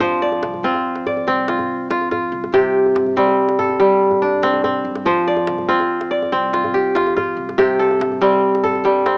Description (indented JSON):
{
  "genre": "west african traditional, West African string and xylophone music",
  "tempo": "95 BPM (dotted quarters)",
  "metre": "12/8",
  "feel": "straight",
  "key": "F major",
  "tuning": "A4 = 440 Hz",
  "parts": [
    { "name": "kora", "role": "arpeggios", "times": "0.0-9.2 s", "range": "C3 to D5", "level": "-18 LUFS", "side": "equal", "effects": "cassette tape" },
    { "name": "upright bass", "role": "bass", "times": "0.0-9.2 s", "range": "C2 to G2", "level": "-37 LUFS", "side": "equal", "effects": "none" },
    { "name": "djembe", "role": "percussion", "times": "0.0-9.2 s", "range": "none", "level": "-30 LUFS", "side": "equal", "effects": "none" }
  ],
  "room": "light reverb, studio reverb",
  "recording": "home recording on cassette, small speaker sound",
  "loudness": "-17 LUFS",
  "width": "mono",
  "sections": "0.0-9.2 A section",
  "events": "none",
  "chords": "0.0 F5; 2.5 C5; 5.1 F5; 7.6 C5"
}